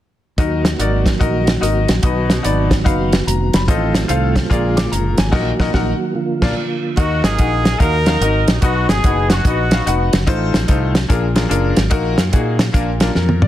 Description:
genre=uptempo gospel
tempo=146 BPM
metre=4/4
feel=swing 65% on 8ths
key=Eb harmonic minor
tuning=A4 = 439 Hz
part: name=bright baby grand piano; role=accompaniment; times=0.4-13.5 s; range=A2 to D6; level=-20 LUFS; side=left 4 dB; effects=none
part: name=mellow tonewheel organ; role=sustained chords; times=0.4-7.0 s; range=D3 to Gb4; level=-22 LUFS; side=right 3 dB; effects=fast rotary speaker, chorus vibrato
part: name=fingered electric bass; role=bass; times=0.4-13.5 s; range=F1 to Bb2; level=-19 LUFS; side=equal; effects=none
part: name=warm soul drum kit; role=drums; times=0.4-13.5 s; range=crash cymbal, hi-hat, kick drum, snare drum, toms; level=-17 LUFS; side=equal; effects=none
part: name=clear trumpet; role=melody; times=7.0-10.1 s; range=F#4 to Bb4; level=-22 LUFS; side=right 4 dB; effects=slapback echo
part: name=dark horn section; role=melody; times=7.0-10.1 s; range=Bb3 to Bb4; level=-22 LUFS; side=left 2 dB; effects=none
room=light reverb, small room ambience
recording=dense, heavily limited modern master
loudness=-14 LUFS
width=side -12 dB against mid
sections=0.4-7.0 A section; 7.0-13.5 B section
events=band accent 5.3-7.0; drum fill 13.2-13.5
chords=0.4 Ebm; 2.0 B; 3.7 F7/A; 4.5 Bb7; 5.3 Ebm/Bb; 6.2 Bb; 7.0 Ebm; 8.6 B; 10.3 F7/A; 11.1 Bb7; 11.9 Ebm/Bb; 12.7 Bb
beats=| 0.38 0.79 1.21 1.62 | 2.03 2.44 2.85 3.27 | 3.68 4.09 4.50 4.91 | 5.33 5.74 6.15 6.56 | 6.98 7.39 7.80 8.21 | 8.62 9.04 9.45 9.86 | 10.27 10.68 11.10 11.51 | 11.92 12.33 12.74 13.15

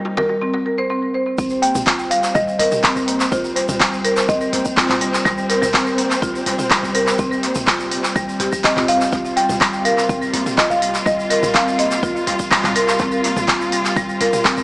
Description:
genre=afro house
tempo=124 BPM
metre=4/4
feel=straight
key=C minor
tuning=A4 = 440 Hz
part: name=buzzing marimba with soft mallets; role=melody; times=0.0-5.0, 8.6-12.7 s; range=Bb4 to G5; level=-21 LUFS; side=equal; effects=tape echo
part: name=dark chamber string section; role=sustained chords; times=0.0-14.6 s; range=C3 to F4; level=-24 LUFS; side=equal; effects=sidechain pumping
part: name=marimba with medium hard mallets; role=arpeggios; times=0.0-14.6 s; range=G3 to C5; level=-20 LUFS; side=equal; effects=sidechain pumping, tape echo
part: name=warm 808-style bass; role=bass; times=1.4-14.6 s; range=G1 to C2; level=-33 LUFS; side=equal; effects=sidechain pumping
part: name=electronic kick drum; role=drums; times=1.4-14.6 s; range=none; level=-24 LUFS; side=equal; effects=none
part: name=tube shaker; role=percussion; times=1.4-14.6 s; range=none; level=-30 LUFS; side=equal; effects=tape echo
part: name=deep house drum kit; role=drums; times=1.6-14.6 s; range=handclaps, hi-hat, toms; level=-19 LUFS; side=equal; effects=tape echo
room=moderate echo chamber reverb, RT60 1.3 s, studio ambience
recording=echo-heavy mix, small speaker sound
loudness=-15 LUFS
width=side -24 dB against mid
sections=0.0-1.4 A section; 1.4-14.6 B section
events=drop 1.4-14.6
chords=0.0 Cm7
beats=0.42 0.90 | 1.39 1.87 2.35 2.84 | 3.32 3.80 4.29 4.77 | 5.26 5.74 6.22 6.71 | 7.19 7.67 8.16 8.64 | 9.13 9.61 10.10 10.58 | 11.06 11.55 12.03 12.51 | 13.00 13.48 13.97 14.45

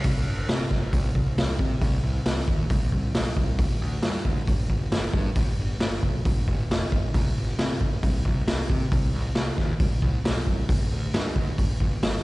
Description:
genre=classic rock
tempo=135 BPM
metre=4/4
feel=straight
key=unclear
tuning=A4 = 440 Hz
part: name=fuzz picked electric bass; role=bass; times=0.0-12.2 s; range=F1 to C3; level=-28 LUFS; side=equal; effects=overdrive
part: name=raw garage drum kit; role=drums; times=0.0-12.1 s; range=hi-hat, kick drum, snare drum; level=-24 LUFS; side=equal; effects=none
room=little or no reverb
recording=live gig heard through the venue's PA, recital hall reverb, nothing above 10.5 kHz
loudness=-22 LUFS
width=side -20 dB against mid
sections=0.0-12.2 A section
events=none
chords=none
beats=| 0.05 0.49 0.93 1.38 | 1.82 2.26 2.71 3.15 | 3.59 4.04 4.48 4.92 | 5.37 5.81 6.25 6.70 | 7.14 7.58 8.03 8.47 | 8.92 9.36 9.80 10.25 | 10.69 11.14 11.58 12.02

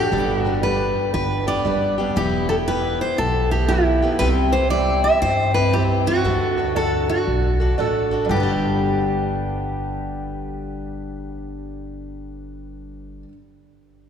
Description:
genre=honky-tonk and classic country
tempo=117 BPM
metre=4/4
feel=swing 65% on 8ths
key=G major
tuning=A4 = 439 Hz
part: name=picked steel-string acoustic guitar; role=melody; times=0.0-13.2 s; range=E4 to E5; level=-22 LUFS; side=right 1 dB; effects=none
part: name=clear upright piano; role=accompaniment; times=0.0-13.3 s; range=D4 to C5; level=-29 LUFS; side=right 3 dB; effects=none
part: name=picked steel-string acoustic guitar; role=accompaniment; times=0.0-13.4 s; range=G2 to A4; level=-24 LUFS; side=left 2 dB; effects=none
part: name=upright bass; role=bass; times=0.0-13.2 s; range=E1 to G2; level=-25 LUFS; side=equal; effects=none
room=wet cathedral reverb, RT60 4.5 s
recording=recorded in a church or concert hall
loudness=-18 LUFS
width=side -8 dB against mid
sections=0.0-8.3 A section; 8.3-12.4 B section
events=none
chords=0.1 G; 2.2 Emadd9; 4.2 C; 6.3 D; 8.3 G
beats=| 0.11 0.62 1.14 1.65 | 2.16 2.67 3.18 3.69 | 4.21 4.72 5.23 5.74 | 6.25 6.76 7.28 7.79 | 8.30 8.81 9.32 9.83 | 10.34 10.86 11.37 11.88

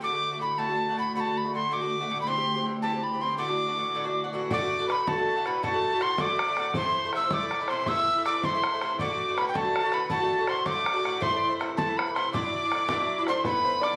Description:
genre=celtic folk, Celtic jig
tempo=107 BPM (dotted quarters)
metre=6/8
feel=straight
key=D mixolydian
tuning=A4 = 442 Hz
part: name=tin whistle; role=melody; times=0.0-14.0 s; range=G5 to E6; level=-29 LUFS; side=equal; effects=slapback echo
part: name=Irish bouzouki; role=accompaniment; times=0.0-14.0 s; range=G2 to G4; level=-34 LUFS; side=equal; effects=none
part: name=rich symphonic string section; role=drone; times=0.0-4.6 s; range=D2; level=-38 LUFS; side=equal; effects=none
part: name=warm fiddle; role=second line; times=4.5-14.0 s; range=A4 to E5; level=-36 LUFS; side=equal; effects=none
part: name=bodhran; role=percussion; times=4.5-14.0 s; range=none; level=-36 LUFS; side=equal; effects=none
part: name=bluegrass banjo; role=second line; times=13.3-14.0 s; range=B4 to D5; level=-34 LUFS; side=equal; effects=none
room=moderate studio ambience, RT60 0.5 s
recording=recorded on a phone in the room, club reverb, compression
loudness=-27 LUFS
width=mono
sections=0.0-4.5 A section; 4.5-13.5 A section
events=none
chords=0.0 D; 2.3 C; 3.4 Dadd9; 4.5 D; 6.8 Am; 9.0 D; 11.2 Am; 12.3 Dadd9; 13.5 Em7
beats=| 0.02 0.59 | 1.15 1.71 | 2.27 2.83 | 3.40 3.96 | 4.51 5.08 | 5.63 6.19 | 6.75 7.31 | 7.87 8.43 | 8.99 9.54 | 10.10 10.66 | 11.22 11.78 | 12.34 12.89 | 13.45

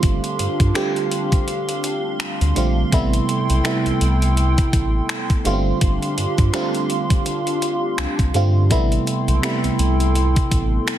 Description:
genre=contemporary R&B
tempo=83 BPM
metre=4/4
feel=swing 58% on 16ths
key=unclear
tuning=A4 = 438 Hz
part: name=FM electric piano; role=accompaniment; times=0.0-11.0 s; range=C3 to G4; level=-22 LUFS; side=right 2 dB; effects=chorus, phaser
part: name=hollow soft pad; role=sustained chords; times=0.0-11.0 s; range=D4 to C6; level=-26 LUFS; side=equal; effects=chorus, sidechain pumping
part: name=sub bass with octave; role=bass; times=0.0-10.8 s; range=G1 to G2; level=-19 LUFS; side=equal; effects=none
part: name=clean 12-bit digital drum machine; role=drums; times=0.0-11.0 s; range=finger snaps, hi-hat, kick drum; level=-22 LUFS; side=equal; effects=overdrive, soft clipping on snare
room=light reverb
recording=dense, heavily limited modern master, lossy compression artefacts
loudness=-17 LUFS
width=side -11 dB against mid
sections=0.0-11.0 A section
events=none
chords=0.0 G7sus4; 2.9 Am7; 5.5 G7sus4; 8.7 Am7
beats=| 0.03 0.76 1.48 2.20 | 2.92 3.65 4.37 5.09 | 5.82 6.54 7.26 7.98 | 8.71 9.43 10.15 10.88

